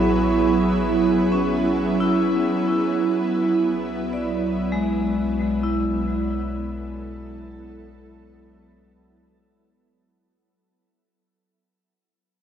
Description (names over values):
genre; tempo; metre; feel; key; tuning
ambient; 66 BPM; 4/4; straight; B dorian; A4 = 442 Hz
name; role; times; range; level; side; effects
ethereal airy pad; sustained chords; 0.0-10.2 s; F#3 to A4; -21 LUFS; right 2 dB; ensemble chorus, built-in reverb, shimmer reverb
vibraphone with hard mallets; arpeggios; 0.0-10.2 s; G#3 to C#6; -26 LUFS; left 2 dB; diffuse ambient delay, shimmer reverb
deep rumbling drone; bass; 0.0-10.1 s; A1 to B1; -32 LUFS; equal; built-in reverb
room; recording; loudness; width
wet plate reverb, RT60 2.3 s; dreamy mix soaked in reverb, cassette tape; -19 LUFS; side -9 dB against mid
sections
0.0-10.2 A section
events
fade-out 0.5-10.2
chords
0.0 Amaj7; 2.9 Bm7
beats
0.15 1.06 1.97 | 2.88 3.79 4.70 5.61 | 6.52 7.43 8.34 9.25